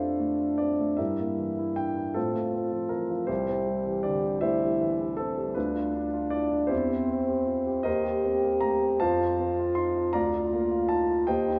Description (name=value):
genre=classical, romantic duo for French horn and grand piano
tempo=52 BPM (dotted quarters)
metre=6/8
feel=rubato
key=Bb major from 7.9 s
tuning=A4 = 441 Hz
part: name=mellow French horn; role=melody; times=0.0-11.6 s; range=C4 to G4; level=-30 LUFS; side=equal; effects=none
part: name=warm grand piano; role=accompaniment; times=0.0-11.6 s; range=C2 to C6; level=-30 LUFS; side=equal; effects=none
room=wet recital hall reverb, RT60 1.4 s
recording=nothing above 7.8 kHz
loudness=-27 LUFS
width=mono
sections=0.0-11.6 A section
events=none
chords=0.0 F; 1.0 Edim/G; 2.2 F/A; 3.3 C; 5.6 Bdim/D; 6.7 C/E; 7.9 Cm7/Eb; 9.0 F; 10.2 Bb/D